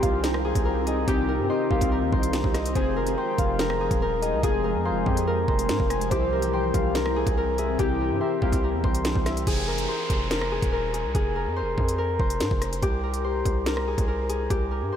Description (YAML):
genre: hip hop, drill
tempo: 143 BPM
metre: 4/4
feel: half-time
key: F minor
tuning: A4 = 440 Hz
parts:
  - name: Celtic harp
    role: melody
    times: 0.0-15.0 s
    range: G4 to C5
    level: -27 LUFS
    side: left 3 dB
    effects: ping-pong delay
  - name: soft octave-layered synth lead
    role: second line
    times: 0.0-9.5 s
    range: C5 to Ab5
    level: -32 LUFS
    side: left 2 dB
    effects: chorus, ping-pong delay
  - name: warbly lo-fi synth keys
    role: accompaniment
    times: 0.0-9.5 s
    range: C3 to Ab4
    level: -31 LUFS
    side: equal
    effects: chorus, phaser
  - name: glassy FM pad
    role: sustained chords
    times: 0.0-9.4 s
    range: Eb3 to F4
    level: -34 LUFS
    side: right 1 dB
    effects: ensemble chorus, built-in reverb
  - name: distorted 808-style bass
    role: bass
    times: 0.0-14.9 s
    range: Eb1 to Ab2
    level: -29 LUFS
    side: right 1 dB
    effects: distortion
  - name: drill drum kit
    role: drums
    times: 0.0-14.6 s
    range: crash cymbal, hi-hat, kick drum, rim click, snare drum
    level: -28 LUFS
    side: right 1 dB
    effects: none
  - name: downlifter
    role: sound effects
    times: 9.5-12.8 s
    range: none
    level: -36 LUFS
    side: right 1 dB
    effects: none
room: moderate huge ambient reverb, RT60 9.2 s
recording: dreamy mix soaked in reverb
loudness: -22 LUFS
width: side -9 dB against mid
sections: 0.0-9.5 A section; 9.5-15.0 B section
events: none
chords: 0.0 Cm; 2.8 Fmadd9; 6.1 C; 9.5 Fm; 12.8 C5